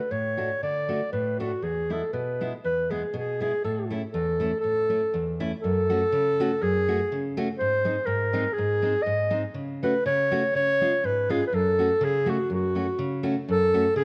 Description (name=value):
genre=alpine folk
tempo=121 BPM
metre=2/4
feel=swing 53% on 8ths, rubato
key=A major, F# minor from 5.6 s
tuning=A4 = 440 Hz
part: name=mellow clarinet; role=melody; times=0.0-14.0 s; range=F#4 to D#5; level=-27 LUFS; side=equal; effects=none
part: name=fingerpicked steel-string acoustic guitar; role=accompaniment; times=0.1-14.0 s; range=E2 to F#4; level=-31 LUFS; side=equal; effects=none
room=light reverb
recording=none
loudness=-26 LUFS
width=mono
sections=0.0-5.6 A section; 5.6-13.5 B section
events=none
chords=0.0 D; 1.6 E; 3.6 A; 5.6 F#m; 7.6 G#; 9.6 F#m/C#; 10.5 C#; 11.5 F#m